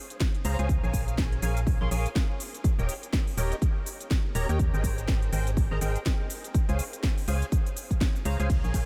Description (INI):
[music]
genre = piano house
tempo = 123 BPM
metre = 4/4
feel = swing 58% on 16ths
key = unclear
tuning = A4 = 438 Hz
[part]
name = house drum kit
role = drums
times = 0.1-8.9 s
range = hi-hat, ride cymbal, shaker, snare drum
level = -39 LUFS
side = equal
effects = none
[part]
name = electronic kick drum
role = drums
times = 0.2-8.9 s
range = none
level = -29 LUFS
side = equal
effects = none
[part]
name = percussive organ stab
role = riff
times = 0.4-8.9 s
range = G4 to C6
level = -38 LUFS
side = equal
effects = ensemble chorus, vintage 12-bit sampler grit, sidechain pumping, analog delay
[part]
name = organ-like FM bass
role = bass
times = 0.4-8.9 s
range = Eb1 to Eb2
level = -30 LUFS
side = equal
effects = sidechain pumping
[sound]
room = light reverb, digital ambience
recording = none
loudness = -28 LUFS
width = mono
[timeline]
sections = 0.0-8.9 A section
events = none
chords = 0.0 Dbmaj7; 0.7 Bbm7; 2.6 Eb7; 4.6 Abmaj9; 6.3 Dbmaj7